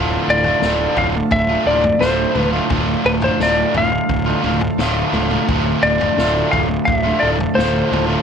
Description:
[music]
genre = psychedelic rock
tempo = 86 BPM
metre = 4/4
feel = straight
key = D minor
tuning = A4 = 444 Hz
[part]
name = hand-pumped harmonium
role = sustained chords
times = 0.0-8.2 s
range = F3 to A4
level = -29 LUFS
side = right 14 dB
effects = none
[part]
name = crunchy overdriven guitar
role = riff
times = 0.0-8.2 s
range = D2 to F4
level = -18 LUFS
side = equal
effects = harmonic tremolo
[part]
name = fuzz fingered electric bass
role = bass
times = 0.0-8.1 s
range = D1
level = -22 LUFS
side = equal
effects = overdrive
[part]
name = clean lap steel guitar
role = melody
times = 0.3-8.0 s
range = B4 to F5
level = -18 LUFS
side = left 1 dB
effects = slapback echo
[part]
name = vintage drum kit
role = drums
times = 0.4-8.1 s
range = kick drum, snare drum, toms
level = -25 LUFS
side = left 3 dB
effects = none
[sound]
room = light reverb, small room ambience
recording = 1960s-style stereo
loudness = -14 LUFS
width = side -7 dB against mid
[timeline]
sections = 0.0-8.2 A section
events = none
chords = 0.0 Dm

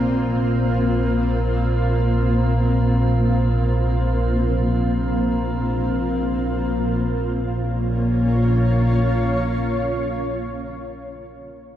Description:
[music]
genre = dark ambient drone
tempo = free time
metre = none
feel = none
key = Bb minor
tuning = A4 = 441 Hz
[part]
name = granular cloud pad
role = sustained chords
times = 0.0-10.9 s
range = Bb3 to Db5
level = -23 LUFS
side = equal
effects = built-in reverb
[part]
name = analog drone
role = drone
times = 0.0-10.5 s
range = Bb1 to Bb2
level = -20 LUFS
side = equal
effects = chorus
[part]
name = metallic inharmonic drone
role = texture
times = 0.0-7.0 s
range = Bb4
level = -31 LUFS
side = right 1 dB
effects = chorus, built-in reverb
[sound]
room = wet echo chamber reverb, RT60 2.5 s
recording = none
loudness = -18 LUFS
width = side -11 dB against mid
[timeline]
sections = 0.0-7.0 A section; 7.0-11.2 B section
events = none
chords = 0.0 Bbsus2; 7.0 Bbm

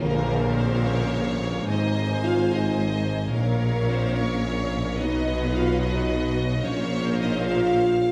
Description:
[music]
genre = cinematic, epic orchestral film score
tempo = 73 BPM (dotted quarters)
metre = 6/8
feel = straight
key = Bb minor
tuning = A4 = 444 Hz
[part]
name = warm symphonic violin section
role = melody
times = 0.0-8.1 s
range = Bb4 to F5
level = -35 LUFS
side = equal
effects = none
[part]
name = warm symphonic violin section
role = second line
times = 0.0-8.1 s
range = C5 to Ab5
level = -38 LUFS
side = equal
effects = none
[part]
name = warm symphonic viola section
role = accompaniment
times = 0.0-8.1 s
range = F#4 to Db5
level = -36 LUFS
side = equal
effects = none
[part]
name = mellow French horn section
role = sustained chords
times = 0.0-8.1 s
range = Bb3 to F4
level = -29 LUFS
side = equal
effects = none
[part]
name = clear symphonic double bass section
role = bass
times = 0.0-8.1 s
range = Ab1 to B1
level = -31 LUFS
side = equal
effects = none
[part]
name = warm symphonic cello section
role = bass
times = 0.0-8.1 s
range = Ab2 to B2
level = -30 LUFS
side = equal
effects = none
[part]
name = warm tuba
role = bass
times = 0.0-8.1 s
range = Ab1 to B1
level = -32 LUFS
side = equal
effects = none
[part]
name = tam-tam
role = percussion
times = 0.0-2.2 s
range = none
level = -34 LUFS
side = equal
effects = none
[sound]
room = wet scoring stage reverb, RT60 1.5 s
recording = none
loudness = -24 LUFS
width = mono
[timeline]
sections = 0.0-8.1 A section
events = band accent 0.0-0.6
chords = 0.0 Bbmadd9; 1.7 Ab; 3.3 Bbm; 5.0 Badd9; 6.6 Bbmadd9

